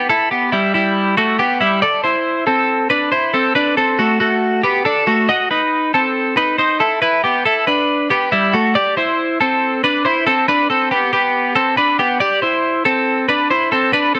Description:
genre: indie pop.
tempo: 139 BPM.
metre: 4/4.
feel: straight.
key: A dorian.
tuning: A4 = 440 Hz.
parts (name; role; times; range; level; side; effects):
twelve-string electric guitar; solo; 0.0-14.2 s; G3 to D#5; -16 LUFS; equal; none.
room: moderate spring reverb, RT60 1.4 s.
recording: none.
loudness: -16 LUFS.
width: mono.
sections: 0.0-8.8 A section; 8.8-14.2 B section.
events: none.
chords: 0.0 Em; 1.8 Amadd9; 3.6 D; 5.1 B7; 6.8 Em; 7.9 G; 8.8 Am7; 10.5 Am11/B; 12.2 C.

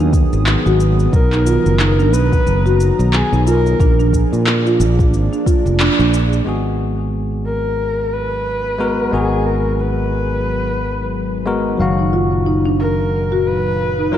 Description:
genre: organic downtempo.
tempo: 90 BPM.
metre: 4/4.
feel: swing 58% on 16ths.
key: unclear.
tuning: A4 = 440 Hz.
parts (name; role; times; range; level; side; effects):
warm analog pad; sustained chords; 0.0-14.2 s; Bb2 to Eb6; -24 LUFS; right 1 dB; chorus, sidechain pumping.
marimba with soft mallets; arpeggios; 0.0-6.1, 12.0-14.2 s; D4 to Gb4; -20 LUFS; right 1 dB; ping-pong delay.
fretless electric bass; bass; 0.0-14.2 s; F1 to Bb2; -18 LUFS; equal; sidechain pumping.
electronic kick drum; drums; 0.1-5.6 s; none; -15 LUFS; equal; none.
electronic shaker and handclaps; drums; 0.1-6.4 s; none; -22 LUFS; equal; none.
dark kamancheh; melody; 1.1-14.2 s; Ab4 to Cb5; -22 LUFS; left 1 dB; digital delay.
bell-like tine electric piano; accompaniment; 6.4-14.2 s; Eb3 to F5; -21 LUFS; left 2 dB; sidechain pumping, ping-pong delay.
room: moderate lush hall reverb, RT60 2.3 s.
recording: dark, warm production.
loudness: -14 LUFS.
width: side -10 dB against mid.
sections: 0.0-6.5 A section; 6.5-14.2 B section.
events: band accent 5.8-6.1.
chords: 0.0 Abm7; 1.1 Bmaj7; 3.8 Bb7; 6.5 Abm9; 11.8 Ebmadd9/Gb.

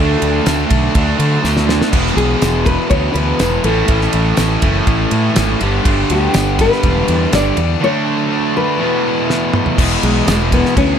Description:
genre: classic rock.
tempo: 122 BPM.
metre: 4/4.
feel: straight.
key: unclear.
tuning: A4 = 440 Hz.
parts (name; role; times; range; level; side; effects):
nylon-string guitar; melody; 0.0-11.0 s; G#3 to D5; -19 LUFS; left 4 dB; none.
crunchy overdriven guitar; riff; 0.0-11.0 s; E2 to D4; -21 LUFS; equal; none.
distorted electric guitar; riff; 0.0-11.0 s; G2 to E4; -21 LUFS; left 14 dB; overdrive.
distorted electric guitar; riff; 0.0-11.0 s; E2 to D4; -20 LUFS; right 10 dB; distortion.
fuzz fingered electric bass; bass; 0.0-10.9 s; E1 to D3; -17 LUFS; equal; overdrive.
damped 70s drum kit; drums; 0.2-10.9 s; crash cymbal, kick drum, ride cymbal, snare drum, toms; -18 LUFS; equal; none.
tambourine; percussion; 0.5-10.4 s; none; -32 LUFS; right 7 dB; none.
room: light reverb.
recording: none.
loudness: -12 LUFS.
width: side -8 dB against mid.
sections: 0.0-9.8 A section; 9.8-11.0 A section.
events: drum fill 1.4-1.9, 9.3-9.8.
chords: 0.0 D; 1.9 E; 3.6 A; 5.6 G; 7.8 D; 8.8 Esus4; 9.8 E.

